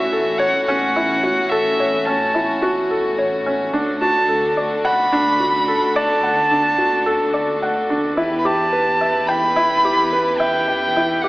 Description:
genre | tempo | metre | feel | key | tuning
piano and strings electronica | 108 BPM | 4/4 | straight | unclear | A4 = 440 Hz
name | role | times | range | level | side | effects
dark violin | melody | 0.0-11.3 s | E5 to B5 | -19 LUFS | equal | shimmer reverb
rich chamber string section | sustained chords | 0.0-11.3 s | D3 to B4 | -26 LUFS | left 1 dB | shimmer reverb
felt-muted upright piano | riff | 0.0-11.3 s | C#4 to G5 | -19 LUFS | equal | shimmer reverb
dark detuned saw bass | bass | 0.0-11.3 s | A1 to E2 | -33 LUFS | equal | none
room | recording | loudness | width
moderate echo chamber reverb, RT60 1.5 s, small room ambience | AM radio sound | -16 LUFS | side -19 dB against mid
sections
0.0-11.3 A section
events
none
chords
0.0 A6; 3.7 D; 8.2 Em

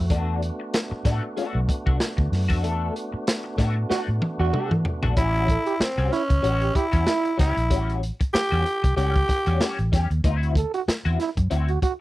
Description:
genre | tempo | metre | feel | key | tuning
funk | 95 BPM | 4/4 | swing 56% on 16ths | A mixolydian | A4 = 440 Hz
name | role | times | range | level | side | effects
percussive tonewheel organ | sustained chords | 0.0-5.1 s | A3 to F#4 | -33 LUFS | right 1 dB | slow rotary speaker
vintage muted fingered electric bass | bass | 0.0-11.8 s | A1 to E3 | -23 LUFS | equal | none
electric guitar at the edge of break-up | accompaniment | 0.1-11.9 s | G3 to A4 | -30 LUFS | left 6 dB | wah, analog chorus
crunchy breakbeat drum kit | drums | 0.1-12.0 s | hi-hat, kick drum, snare drum, toms | -24 LUFS | equal | none
growling trombone | second line | 3.9-11.9 s | E4 to A4 | -26 LUFS | right 7 dB | none
growling tenor saxophone | melody | 5.2-9.9 s | C4 to G4 | -24 LUFS | equal | none
room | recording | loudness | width
little or no reverb | dry, close 1970s-style studio recording | -21 LUFS | side -17 dB against mid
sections
0.0-5.2 A section; 5.2-12.0 B section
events
band accent 2.6-5.2; drum fill 3.9-5.2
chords
0.1 E9sus4; 5.2 A6; 10.2 D9

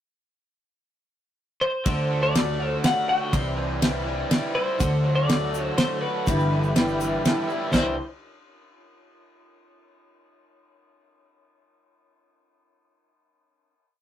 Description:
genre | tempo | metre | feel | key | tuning
folk rock and heartland rock | 122 BPM | 3/4 | straight | C lydian | A4 = 440 Hz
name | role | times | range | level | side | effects
twelve-string electric guitar | melody | 1.6-8.0 s | B4 to G5 | -26 LUFS | left 2 dB | slapback echo
musette accordion | sustained chords | 1.8-8.1 s | D4 to C5 | -36 LUFS | right 2 dB | none
picked plugged-in twelve-string acoustic guitar | accompaniment | 1.9-7.9 s | G2 to F#4 | -31 LUFS | left 2 dB | none
raw garage guitar | riff | 1.9-7.9 s | G2 to F#4 | -30 LUFS | right 1 dB | overdrive
upright bass | bass | 1.9-8.0 s | G1 to D2 | -28 LUFS | equal | none
damped 70s drum kit | drums | 1.9-7.9 s | china cymbal, kick drum, ride cymbal, snare drum | -25 LUFS | equal | none
warm grand piano | accompaniment | 4.8-8.0 s | D4 to B5 | -32 LUFS | right 2 dB | none
tube shaker | percussion | 4.8-8.0 s | none | -42 LUFS | left 5 dB | none
room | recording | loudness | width
moderate booth ambience, RT60 0.2 s | rough rehearsal-room recording, warm saturation | -21 LUFS | side -10 dB against mid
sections
0.4-1.9 pickup bar; 1.9-7.7 pre-chorus; 7.7-9.2 final chord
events
grand piano fill 6.8-7.7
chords
0.4 N.C.; 1.9 D; 3.3 Cadd9; 4.8 D; 6.3 G6; 7.7 Cadd9

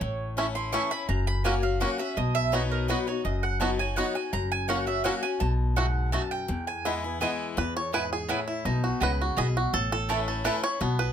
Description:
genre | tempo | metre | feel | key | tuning
bluegrass | 167 BPM | 3/4 | straight | E major | A4 = 441 Hz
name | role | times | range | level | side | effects
picked swing-style acoustic guitar | accompaniment | 0.0-11.1 s | E2 to F#4 | -31 LUFS | left 6 dB | none
mandolin | stabs | 0.0-10.5 s | A3 to C#6 | -31 LUFS | right 5 dB | none
upright bass | bass | 0.0-11.1 s | F#1 to E2 | -29 LUFS | equal | none
bluegrass banjo | melody | 0.4-11.1 s | A3 to C#5 | -29 LUFS | right 3 dB | none
room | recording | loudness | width
light reverb | close, detailed microphones | -25 LUFS | side -9 dB against mid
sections
0.0-7.6 A section; 7.6-11.1 A section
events
mandolin solo 0.0-7.6; five-string banjo solo 7.6-11.1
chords
0.0 A; 1.1 F#; 2.2 B; 4.3 F#; 5.4 B7(no3); 6.5 E; 8.7 B; 9.7 A

